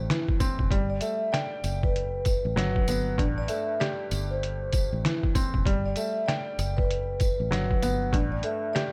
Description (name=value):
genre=hip hop, boom-bap hip-hop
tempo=97 BPM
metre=4/4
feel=swing 62% on 16ths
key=G major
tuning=A4 = 441 Hz
part: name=vibraphone with soft mallets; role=melody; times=0.0-8.9 s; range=B4 to E5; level=-34 LUFS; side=equal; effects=none
part: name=warm upright piano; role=accompaniment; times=0.0-8.9 s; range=G2 to G5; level=-34 LUFS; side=equal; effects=none
part: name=fingered electric bass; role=bass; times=0.0-8.4 s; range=F#1 to A1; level=-33 LUFS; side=equal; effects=none
part: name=trip hop sampler-style drum kit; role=drums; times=0.1-8.9 s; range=hi-hat, kick drum, snare drum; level=-30 LUFS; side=equal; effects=vintage 12-bit sampler grit
part: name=tambourine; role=percussion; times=0.4-8.0 s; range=none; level=-44 LUFS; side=equal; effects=none
room=little or no reverb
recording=none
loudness=-27 LUFS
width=mono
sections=0.0-8.9 A section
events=none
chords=0.0 Am7; 0.7 Gmaj9; 3.2 Am7; 5.7 Gmaj9; 8.1 A7(no3)